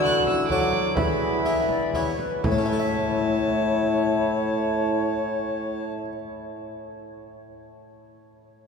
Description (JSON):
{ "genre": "classical, renaissance-style consort dance", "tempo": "118-135 BPM", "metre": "3/4", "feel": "straight", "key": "A major", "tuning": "A4 = 436 Hz", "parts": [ { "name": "alto recorder", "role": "melody", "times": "0.0-5.8 s", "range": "G#4 to E5", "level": "-32 LUFS", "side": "left 4 dB", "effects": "none" }, { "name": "warm violin", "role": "second line", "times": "0.0-5.8 s", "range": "A5 to F#6", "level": "-30 LUFS", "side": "right 2 dB", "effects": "none" }, { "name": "clear trombone", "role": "accompaniment", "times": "0.0-5.8 s", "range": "E4 to F#4", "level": "-28 LUFS", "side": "left 2 dB", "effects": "none" }, { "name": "harpsichord", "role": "accompaniment", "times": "0.0-6.2 s", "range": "A2 to E5", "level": "-29 LUFS", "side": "left 2 dB", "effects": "none" }, { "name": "mellow bassoon", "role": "bass", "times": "0.0-5.8 s", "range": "A2 to F#3", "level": "-28 LUFS", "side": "right 1 dB", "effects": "none" }, { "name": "frame drum", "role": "percussion", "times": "0.3-2.7 s", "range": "none", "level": "-32 LUFS", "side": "right 1 dB", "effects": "none" } ], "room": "wet cathedral reverb, RT60 7.0 s", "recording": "heard from further back in the room", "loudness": "-21 LUFS", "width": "side -5 dB against mid", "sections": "0.0-2.4 A section; 2.4-5.5 B section", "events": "slowing down 0.0-2.4", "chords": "0.0 D; 1.0 E; 2.4 A", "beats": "0.06 0.51 | 0.97 1.45 1.94 | 2.44 2.95 3.46 | 3.96 4.47 4.97" }